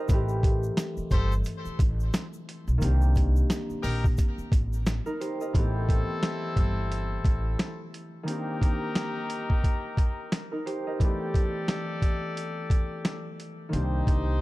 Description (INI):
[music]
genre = hip hop, boom-bap hip-hop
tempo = 88 BPM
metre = 4/4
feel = swing 58% on 16ths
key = unclear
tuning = A4 = 440 Hz
[part]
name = concert harp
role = accompaniment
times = 0.0-14.4 s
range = Eb3 to Eb5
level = -33 LUFS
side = equal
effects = cassette tape, high-pass filter, low-pass filter
[part]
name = upright bass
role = bass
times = 0.1-7.5, 13.7-14.4 s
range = G1 to C2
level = -26 LUFS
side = equal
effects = none
[part]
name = boom bap sampler-style drum kit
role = drums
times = 0.1-14.3 s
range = hi-hat, kick drum, snare drum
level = -26 LUFS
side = equal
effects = none
[part]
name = egg shaker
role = percussion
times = 0.1-5.5 s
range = none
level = -53 LUFS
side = left 5 dB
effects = none
[part]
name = bright trumpet section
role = stabs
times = 1.1-14.4 s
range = C4 to D5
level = -36 LUFS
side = left 3 dB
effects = high-pass filter, low-pass filter, digital delay
[sound]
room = small room ambience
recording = dark, warm production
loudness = -25 LUFS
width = side -19 dB against mid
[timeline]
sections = 0.0-5.5 A section; 5.5-14.4 B section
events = break 8.3-13.7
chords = 0.1 Am7; 2.8 Cm7; 5.5 Am7; 8.3 Cm7; 11.0 Am7; 13.7 Cm7